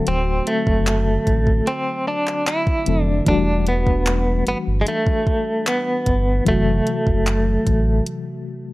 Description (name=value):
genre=contemporary R&B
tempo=75 BPM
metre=4/4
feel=straight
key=E minor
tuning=A4 = 441 Hz
part: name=direct-recorded clean electric guitar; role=melody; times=0.0-8.0 s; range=G#3 to E4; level=-21 LUFS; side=equal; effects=tremolo
part: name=FM electric piano with auto-pan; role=accompaniment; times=0.0-8.7 s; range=C3 to A4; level=-24 LUFS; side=left 2 dB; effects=none
part: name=sub bass with octave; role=bass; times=0.1-8.0 s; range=D1 to A1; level=-20 LUFS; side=equal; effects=none
part: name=smooth R&B drum kit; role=drums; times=0.1-8.3 s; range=handclaps, hi-hat, kick drum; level=-22 LUFS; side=equal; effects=none
room=little or no reverb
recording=dry, gritty hardware recording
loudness=-17 LUFS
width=side -18 dB against mid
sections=0.0-8.7 A section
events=none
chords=0.0 D7; 3.3 Em11; 6.5 F#m7b5